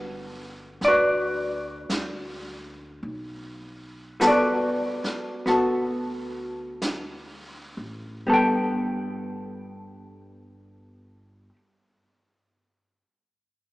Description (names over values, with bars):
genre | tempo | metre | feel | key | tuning
jazz ballad | 40-57 BPM | 4/4 | swing 67% on 8ths | G major | A4 = 441 Hz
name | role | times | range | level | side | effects
hollow-body jazz guitar | accompaniment | 0.0-11.6 s | G3 to G5 | -23 LUFS | equal | none
upright bass | bass | 0.0-11.5 s | G1 to D2 | -42 LUFS | equal | none
jazz brush drum kit | drums | 0.8-9.0 s | brushed snare drum, hi-hat, snare drum | -35 LUFS | right 1 dB | none
room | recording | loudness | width
wet church reverb, RT60 3.0 s | recorded in a church or concert hall, small speaker sound | -22 LUFS | side -19 dB against mid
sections
0.0-8.3 A section; 8.3-13.7 B section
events
slowing down 0.0-8.3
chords
0.0 Gmaj9; 8.3 Gadd9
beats
0.81 1.90 | 3.02 4.21 5.46 6.82 | 8.27 9.78 11.27